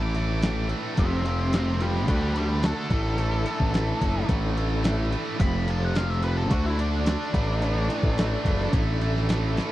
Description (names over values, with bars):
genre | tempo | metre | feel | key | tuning
classic rock | 108 BPM | 4/4 | straight | unclear | A4 = 440 Hz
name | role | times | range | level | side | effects
octave-fuzz lead guitar | melody | 0.0-8.7 s | D4 to D6 | -32 LUFS | left 1 dB | wah, distortion, tape echo
tonewheel organ | sustained chords | 0.0-9.7 s | A3 to A4 | -35 LUFS | left 1 dB | slow rotary speaker, overdrive, chorus vibrato
biting overdriven guitar | riff | 0.0-9.7 s | F2 to D4 | -29 LUFS | right 1 dB | none
growling picked electric bass | bass | 0.0-9.6 s | F1 to D2 | -26 LUFS | equal | overdrive
dusty soul sampler-style drum kit | drums | 0.1-9.7 s | hi-hat, kick drum, snare drum | -26 LUFS | equal | none
room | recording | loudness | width
little or no reverb | dry, close 1970s-style studio recording | -22 LUFS | side -15 dB against mid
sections
0.0-9.7 A section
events
lead electric guitar solo 0.0-9.7; drum fill 9.6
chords
0.0 Asus4; 1.0 F; 2.1 D; 2.9 Asus4; 5.4 F; 6.5 D; 7.3 Asus4